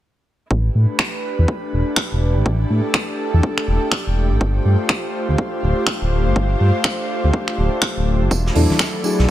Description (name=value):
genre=deep house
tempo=123 BPM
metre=4/4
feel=swing 61% on 16ths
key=A minor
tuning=A4 = 440 Hz
part: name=airy breathy pad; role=sustained chords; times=0.5-9.3 s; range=A3 to D5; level=-23 LUFS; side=equal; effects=chorus, sidechain pumping
part: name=smooth synth bass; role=bass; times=0.5-9.3 s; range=D1 to A2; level=-16 LUFS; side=equal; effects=sidechain pumping
part: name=electronic kick drum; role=drums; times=0.5-8.9 s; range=none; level=-22 LUFS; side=equal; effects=high-pass filter on kick
part: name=rich studio string section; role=texture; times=0.5-9.3 s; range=D4 to G5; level=-31 LUFS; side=left 1 dB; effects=sidechain pumping
part: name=electronic finger snaps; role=drums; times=1.0-8.9 s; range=none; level=-22 LUFS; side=equal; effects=none
part: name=crisp fusion drum kit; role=drums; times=8.3-9.3 s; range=hi-hat, snare drum, tambourine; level=-26 LUFS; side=right 4 dB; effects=high-pass filter on hats, high-pass filter on snare, high-pass filter on perc, high-pass filter on room
part: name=mellow FM electric piano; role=stabs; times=8.6-9.3 s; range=F#3 to A4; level=-19 LUFS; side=left 1 dB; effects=chorus, sidechain pumping
part: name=congas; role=percussion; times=8.6-9.3 s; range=none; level=-25 LUFS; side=left 1 dB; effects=sidechain pumping on perc
room=light reverb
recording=none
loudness=-16 LUFS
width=side -13 dB against mid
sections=0.5-9.3 A section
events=fade-in on string section 0.5-9.3; filter sweep on analog synth bass 0.5-9.3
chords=0.5 A9sus4; 4.4 G9sus4; 8.3 E9sus4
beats=| 0.51 0.99 1.48 1.97 | 2.46 2.94 3.43 3.92 | 4.41 4.90 5.38 5.87 | 6.36 6.85 7.33 7.82 | 8.31 8.80 9.29